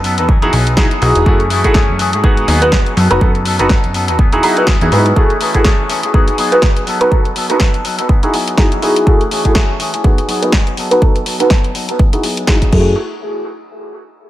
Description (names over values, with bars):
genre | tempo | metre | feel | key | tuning
filtered disco house | 123 BPM | 4/4 | swing 57% on 16ths | F# dorian | A4 = 440 Hz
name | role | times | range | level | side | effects
electric guitar with an envelope filter | riff | 0.0-12.9 s | E3 to A4 | -20 LUFS | left 2 dB | sidechain pumping, low-pass filter, dub echo
plucky analog bass | bass | 0.0-5.1, 12.7-13.0 s | E1 to G#2 | -16 LUFS | equal | sidechain pumping, low-pass filter
house drum kit | drums | 0.0-12.8 s | crash cymbal, hi-hat, snare drum | -20 LUFS | equal | sidechain pumping on hats, sidechain pumping on cymbals
electronic kick drum | drums | 0.3-12.8 s | none | -12 LUFS | equal | none
bright concert grand piano | accompaniment | 0.4-12.9 s | A3 to B4 | -15 LUFS | right 1 dB | phaser, sidechain pumping, low-pass filter, dub echo
room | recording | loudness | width
light reverb, digital ambience | echo-heavy mix | -10 LUFS | side -14 dB against mid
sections
0.0-13.0 A section; 13.0-14.3 B section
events
filter sweep 0.0-13.0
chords
0.3 Emaj9; 1.3 F#m9; 2.2 G#m7; 3.0 B7/F#; 4.2 Emaj9; 5.2 F#m9; 6.1 G#m7; 6.9 B7/F#; 8.1 Emaj9; 9.1 F#m9; 10.0 G#m7; 10.8 B7/F#; 12.0 Emaj9; 12.7 F#m9; 13.0 N.C.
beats
0.29 0.77 | 1.26 1.75 2.24 2.73 | 3.21 3.70 4.19 4.68 | 5.17 5.65 6.14 6.63 | 7.12 7.60 8.09 8.58 | 9.07 9.55 10.04 10.53 | 11.02 11.51 11.99 12.48